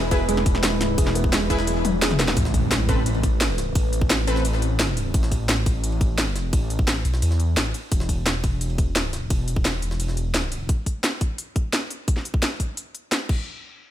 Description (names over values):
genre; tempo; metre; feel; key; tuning
dark technical drum and bass; 173 BPM; 4/4; straight; A harmonic minor; A4 = 440 Hz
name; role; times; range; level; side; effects
deep dark ambient pad; sustained chords; 0.0-5.1 s; G#3 to B4; -30 LUFS; equal; chorus, built-in reverb, sidechain pumping
felt-muted upright piano; arpeggios; 0.0-2.4 s; G#3 to G#4; -29 LUFS; right 4 dB; sidechain pumping, ping-pong delay
wide detuned saw bass; bass; 0.0-10.7 s; E1 to E2; -24 LUFS; equal; chorus, overdrive
orchestra-hit-like synth stab; stabs; 0.1-4.4 s; C4 to B4; -29 LUFS; left 1 dB; built-in reverb, ping-pong delay
drum and bass drum kit; drums; 0.1-13.4 s; crash cymbal, hi-hat, snare drum, toms; -24 LUFS; equal; studio reverb
electronic kick drum; drums; 0.1-13.4 s; none; -22 LUFS; equal; studio reverb
jungle sampler-style drum kit; drums; 0.1-10.6 s; ride cymbal, snare drum; -35 LUFS; right 1 dB; high-pass filter on cymbals, studio reverb, high-pass filter on snare
impact; sound effects; 2.4-3.8 s; none; -29 LUFS; equal; none
room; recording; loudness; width
digital ambience; none; -20 LUFS; side -12 dB against mid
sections
0.0-2.4 A section; 2.4-13.5 B section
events
drop 0.0-2.4; drum fill 1.8-2.4; impact 2.4-3.8; filter sweep on detuned saw bass 2.4-10.7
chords
0.0 E; 2.4 Amadd9; 7.9 N.C.